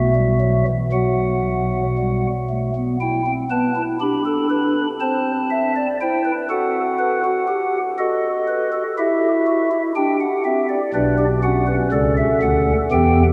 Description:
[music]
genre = classical, baroque-style 4-part fugue for pipe organ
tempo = 60 BPM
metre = 4/4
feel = straight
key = E minor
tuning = A4 = 440 Hz
[part]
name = pipe organ, stopped flute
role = solo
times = 0.0-13.3 s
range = B1 to B5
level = -19 LUFS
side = equal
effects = none
[sound]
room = wet cathedral reverb, RT60 6.5 s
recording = none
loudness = -19 LUFS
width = mono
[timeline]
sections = 0.0-3.0 A section; 3.0-13.3 B section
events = none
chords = 0.0 Bsus4; 0.9 B5; 3.0 Em; 5.0 Am/C; 7.0 B/F#; 9.0 Em; 10.9 Bm

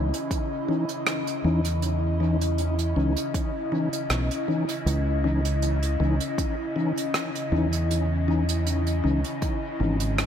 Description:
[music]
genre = ambient dub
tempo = 79 BPM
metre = 4/4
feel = swing 54% on 16ths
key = C# minor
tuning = A4 = 440 Hz
[part]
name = airy breathy pad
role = sustained chords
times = 0.0-10.3 s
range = C#3 to D#5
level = -29 LUFS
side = left 1 dB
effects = chorus
[part]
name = mellow tonewheel organ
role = stabs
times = 0.0-10.0 s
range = E3 to D#4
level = -29 LUFS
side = left 3 dB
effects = chorus vibrato, fast rotary speaker, dub echo
[part]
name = fingered electric bass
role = bass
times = 0.0-10.3 s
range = G#1 to E2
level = -24 LUFS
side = right 1 dB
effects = none
[part]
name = soft brush drum kit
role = drums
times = 0.1-10.3 s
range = hi-hat, rim click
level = -31 LUFS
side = right 3 dB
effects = dub echo
[part]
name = electronic kick drum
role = drums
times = 0.3-9.6 s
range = none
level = -29 LUFS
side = right 1 dB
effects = none
[sound]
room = light reverb, studio ambience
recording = none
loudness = -23 LUFS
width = side -9 dB against mid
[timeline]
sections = 0.0-10.3 A section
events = none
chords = 0.0 C#madd9

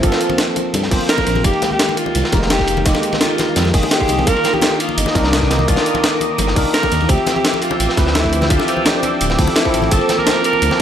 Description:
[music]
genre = liquid drum and bass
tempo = 170 BPM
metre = 4/4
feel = straight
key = C minor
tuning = A4 = 440 Hz
[part]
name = breathy alto saxophone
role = melody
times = 0.0-10.8 s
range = D4 to Bb4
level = -20 LUFS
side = right 1 dB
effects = digital delay
[part]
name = barky tine electric piano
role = accompaniment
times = 0.0-10.8 s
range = Eb3 to A5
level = -20 LUFS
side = equal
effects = analog chorus, ping-pong delay
[part]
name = dark detuned saw bass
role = bass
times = 0.0-10.8 s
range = D1 to G2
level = -19 LUFS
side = equal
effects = none
[part]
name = breakbeat sampler-style drum kit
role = drums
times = 0.0-10.8 s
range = hi-hat, snare drum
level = -20 LUFS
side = equal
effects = none
[part]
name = crunchy breakbeat drum kit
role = drums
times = 0.0-10.8 s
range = hi-hat, ride cymbal, snare drum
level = -23 LUFS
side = equal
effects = high-pass filter on cymbals, high-pass filter on hats, high-pass filter on snare, high-pass filter on room
[part]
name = electronic kick drum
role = drums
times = 0.0-10.8 s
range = none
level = -18 LUFS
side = equal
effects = none
[part]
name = congas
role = percussion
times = 0.1-10.8 s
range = none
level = -27 LUFS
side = left 5 dB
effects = none
[part]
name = warm analog pad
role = sustained chords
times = 4.3-10.8 s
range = G5 to E6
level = -25 LUFS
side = right 2 dB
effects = chorus
[sound]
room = light reverb, studio ambience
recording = none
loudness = -13 LUFS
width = side -9 dB against mid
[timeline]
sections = 0.0-10.8 A section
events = none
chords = 0.0 Gm11; 1.4 Fm11; 4.3 Cm11; 7.1 Dm11; 9.9 Gm11 (rootless)

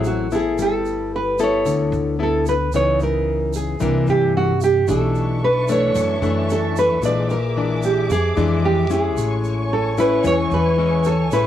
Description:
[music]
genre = bossa nova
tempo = 112 BPM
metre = 4/4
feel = straight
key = A major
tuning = A4 = 442 Hz
[part]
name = nylon-string guitar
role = melody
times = 0.0-11.5 s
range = F#4 to D5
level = -20 LUFS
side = right 2 dB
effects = cassette tape
[part]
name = nylon-string guitar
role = accompaniment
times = 0.0-11.5 s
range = F2 to A4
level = -21 LUFS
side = left 4 dB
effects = cassette tape
[part]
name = upright bass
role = bass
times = 0.0-11.5 s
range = G1 to G2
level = -25 LUFS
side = right 2 dB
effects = none
[part]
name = egg shaker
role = percussion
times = 0.0-11.5 s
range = none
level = -40 LUFS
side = right 12 dB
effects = none
[part]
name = dark studio string section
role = sustained chords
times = 4.9-11.5 s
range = D4 to D6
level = -28 LUFS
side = right 2 dB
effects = cassette tape
[sound]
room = wet booth ambience, RT60 0.2 s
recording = home recording on cassette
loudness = -17 LUFS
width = side -11 dB against mid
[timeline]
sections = 0.0-11.5 A section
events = none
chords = 0.0 D9 (rootless); 0.6 G69; 2.7 C#m9; 3.8 C9; 4.9 Bm11; 7.0 Bb7#11; 9.2 Amaj7

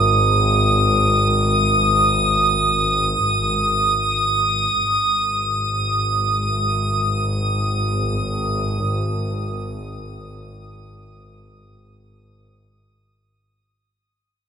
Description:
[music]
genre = ambient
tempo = free time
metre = none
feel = none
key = unclear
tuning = A4 = 438 Hz
[part]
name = dark studio double bass section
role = bass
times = 0.0-13.5 s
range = G#1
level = -21 LUFS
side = equal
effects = none
[part]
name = drifting glass-harmonics texture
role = texture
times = 0.0-13.5 s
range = D#6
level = -18 LUFS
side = right 1 dB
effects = chorus, built-in reverb, shimmer reverb
[sound]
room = wet cathedral reverb, RT60 7.2 s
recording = in a vast, echoing space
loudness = -17 LUFS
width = side -7 dB against mid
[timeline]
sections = 0.0-13.5 A section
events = fade-out 2.0-13.5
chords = 0.0 G#5

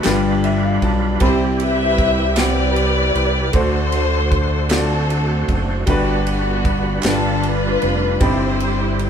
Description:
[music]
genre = slow gospel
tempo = 52 BPM (dotted quarters)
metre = 6/8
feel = straight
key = G major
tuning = A4 = 440 Hz
[part]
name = warm studio string section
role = melody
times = 0.0-9.1 s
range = B3 to E5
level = -21 LUFS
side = left 2 dB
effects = none
[part]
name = bright grand piano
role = accompaniment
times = 0.0-9.1 s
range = G2 to B5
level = -21 LUFS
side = left 2 dB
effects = none
[part]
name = tonewheel organ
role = sustained chords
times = 0.0-9.1 s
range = G3 to C5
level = -26 LUFS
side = right 4 dB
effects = fast rotary speaker, overdrive, chorus vibrato
[part]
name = tight funk drum kit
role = drums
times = 0.0-9.1 s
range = kick drum, ride cymbal, snare drum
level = -24 LUFS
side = right 1 dB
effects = none
[part]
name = group handclap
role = percussion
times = 0.0-7.4 s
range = none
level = -29 LUFS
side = right 3 dB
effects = none
[part]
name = fat analog bass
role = bass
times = 0.1-9.1 s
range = F1 to D2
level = -20 LUFS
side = right 1 dB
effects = none
[sound]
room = moderate studio reverb, RT60 0.8 s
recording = band playing live in one room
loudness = -15 LUFS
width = side -8 dB against mid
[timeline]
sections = 0.0-9.1 A section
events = grand piano fill 0.1-1.2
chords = 0.1 G7; 1.2 Cmaj7; 3.5 D7; 5.9 Gmaj7; 7.0 G7; 8.2 Cmaj7/G

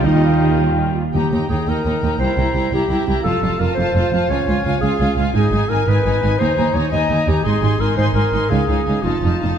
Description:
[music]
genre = cinematic, heroic adventure film score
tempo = 114 BPM (dotted quarters)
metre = 6/8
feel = straight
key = Eb mixolydian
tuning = A4 = 441 Hz
[part]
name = warm symphonic violin section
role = melody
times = 0.0-9.6 s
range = Eb5 to C6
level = -29 LUFS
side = left 5 dB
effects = none
[part]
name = bright oboe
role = second line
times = 0.0-0.6 s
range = Eb4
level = -32 LUFS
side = right 2 dB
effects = none
[part]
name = large flute ensemble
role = second line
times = 0.0-1.0 s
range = G5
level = -31 LUFS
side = left 8 dB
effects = none
[part]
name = warm clarinet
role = second line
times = 0.0-9.6 s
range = F4 to F5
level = -22 LUFS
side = left 1 dB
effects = none
[part]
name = warm symphonic violin section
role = second line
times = 0.0-9.6 s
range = Eb5 to Ab5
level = -28 LUFS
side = left 3 dB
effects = none
[part]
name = rich symphonic viola section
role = accompaniment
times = 0.0-9.6 s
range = G3 to F4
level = -24 LUFS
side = right 1 dB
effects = none
[part]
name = dark trombone section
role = sustained chords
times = 0.0-1.0 s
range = Bb2 to F4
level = -25 LUFS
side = right 4 dB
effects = none
[part]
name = mellow French horn section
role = sustained chords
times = 0.0-0.6 s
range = Eb4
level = -23 LUFS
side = left 1 dB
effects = none
[part]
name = dark trumpet section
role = stabs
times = 0.0-0.9 s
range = G5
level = -28 LUFS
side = right 3 dB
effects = none
[part]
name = warm chamber cello section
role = bass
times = 0.0-9.5 s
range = C2 to Eb3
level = -20 LUFS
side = right 1 dB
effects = none
[part]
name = warm symphonic double bass section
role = bass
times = 0.0-9.5 s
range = F1 to Eb2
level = -22 LUFS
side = right 3 dB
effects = none
[part]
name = timpani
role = percussion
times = 1.1-1.6 s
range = Eb3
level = -26 LUFS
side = equal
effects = none
[sound]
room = moderate concert hall reverb, RT60 1.8 s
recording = dark, warm production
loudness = -15 LUFS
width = side -8 dB against mid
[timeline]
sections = 0.0-1.1 A section; 1.1-9.6 B section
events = none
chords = 0.0 Ebadd9; 1.1 Eb; 2.2 C7; 3.3 F; 4.3 Db; 5.3 Abm; 6.4 Ebsus4; 7.4 Ab; 8.5 Dbadd9; 9.1 F7

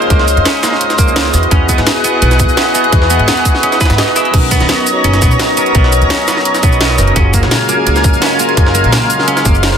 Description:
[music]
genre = liquid drum and bass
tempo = 170 BPM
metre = 4/4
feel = straight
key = B major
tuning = A4 = 444 Hz
[part]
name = overdriven tine electric piano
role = accompaniment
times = 0.0-9.8 s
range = C#3 to F#5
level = -16 LUFS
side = left 1 dB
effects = phaser, ping-pong delay
[part]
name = lush unison pad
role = sustained chords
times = 0.0-9.8 s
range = G#4 to A#5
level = -16 LUFS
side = equal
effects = chorus
[part]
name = clean electric guitar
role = arpeggios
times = 0.0-9.6 s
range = A#3 to B4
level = -19 LUFS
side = right 3 dB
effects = analog chorus, ping-pong delay
[part]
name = drum and bass drum kit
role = drums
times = 0.0-9.7 s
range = cabasa, crash cymbal, hi-hat, rim click, snare drum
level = -17 LUFS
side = right 1 dB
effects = overdrive, small room ambience
[part]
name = upright bass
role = bass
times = 0.1-9.8 s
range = F#1 to G#2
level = -14 LUFS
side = equal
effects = tube saturation
[part]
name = electronic kick drum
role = drums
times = 0.1-9.5 s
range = none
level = -12 LUFS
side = equal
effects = overdrive, small room ambience
[part]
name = jungle sampler-style drum kit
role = drums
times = 0.1-9.8 s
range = hi-hat, snare drum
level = -20 LUFS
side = equal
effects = overdrive, high-pass filter on hats, small room ambience, high-pass filter on snare
[sound]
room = light reverb, digital ambience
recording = dense, heavily limited modern master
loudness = -9 LUFS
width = side -8 dB against mid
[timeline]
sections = 0.0-9.8 A section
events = none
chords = 0.0 C#maj9; 1.3 Emaj9; 4.3 Bmaj9; 7.2 F#maj9

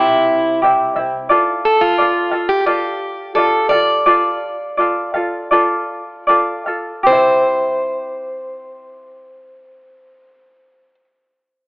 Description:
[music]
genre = pop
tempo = 75-89 BPM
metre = 4/4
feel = straight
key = C major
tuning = A4 = 440 Hz
[part]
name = picked plugged-in steel-string acoustic guitar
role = melody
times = 0.0-10.9 s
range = E4 to D5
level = -17 LUFS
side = equal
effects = slapback echo
[part]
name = tenor ukulele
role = accompaniment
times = 0.0-11.0 s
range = C4 to F5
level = -16 LUFS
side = equal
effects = none
[part]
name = upright bass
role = bass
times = 0.0-1.3 s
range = C2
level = -36 LUFS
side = equal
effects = none
[sound]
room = light reverb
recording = telephone sound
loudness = -13 LUFS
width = side -28 dB against mid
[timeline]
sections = 0.0-7.1 A section; 7.1-10.2 B section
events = slowing down 1.3-7.1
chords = 0.0 C; 1.3 Dm; 7.1 C

